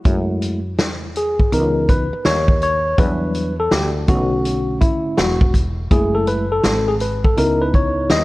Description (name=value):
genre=hip hop, jazz-hop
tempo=82 BPM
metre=4/4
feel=swing 64% on 16ths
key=F# minor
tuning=A4 = 441 Hz
part: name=tine electric piano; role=accompaniment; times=0.1-8.2 s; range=D3 to D#5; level=-19 LUFS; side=left 1 dB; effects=medium stereo tremolo
part: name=woody fretless electric bass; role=bass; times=0.1-8.2 s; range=E1 to F#2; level=-22 LUFS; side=equal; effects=none
part: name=vintage drum kit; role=drums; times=0.1-8.2 s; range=hi-hat, kick drum, snare drum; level=-18 LUFS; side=equal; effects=none
room=light reverb, small room reverb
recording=worn, warbling old tape, cassette tape, warbly pitch drift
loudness=-15 LUFS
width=side -19 dB against mid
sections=0.1-8.2 A section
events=tine electric piano solo 0.1-8.2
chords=0.1 F#m9; 1.5 C#m9; 3.0 Em9; 4.1 Bm9; 5.9 F#m9; 7.4 C#m9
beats=| 0.06 0.79 1.52 2.25 | 2.98 3.71 4.45 5.18 | 5.91 6.64 7.37 8.11